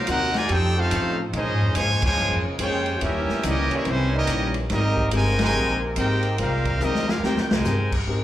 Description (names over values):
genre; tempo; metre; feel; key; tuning
jazz, big band swing; 142 BPM; 4/4; swing 64% on 8ths; Ab major; A4 = 439 Hz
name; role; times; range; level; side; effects
brilliant trumpet section; melody; 0.0-7.9 s; Ab3 to Ab5; -25 LUFS; equal; slapback echo
clear trombone section; second line; 0.0-7.9 s; C3 to G4; -29 LUFS; right 3 dB; none
dark saxophone section; sustained chords; 0.0-8.0 s; C3 to Bb4; -33 LUFS; left 1 dB; none
archtop guitar, miked and amplified; accompaniment; 0.1-8.2 s; C3 to C5; -31 LUFS; left 5 dB; slapback echo
upright bass; bass; 0.1-8.2 s; G1 to Bb2; -25 LUFS; equal; none
swinging big-band drum kit; drums; 0.1-8.0 s; crash cymbal, hi-hat, kick drum, ride cymbal, snare drum; -28 LUFS; equal; none
warm concert grand piano; accompaniment; 8.1-8.2 s; Ab3 to Bb4; -29 LUFS; left 2 dB; none
room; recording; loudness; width
light reverb, small room reverb; live gig heard through the venue's PA, club reverb; -20 LUFS; side -13 dB against mid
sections
0.0-8.1 A section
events
band accent 2.0, 5.3; drum fill 6.8-7.6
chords
0.5 F7b13; 1.3 Bbm9; 3.0 Eb7b9; 4.7 Abmaj9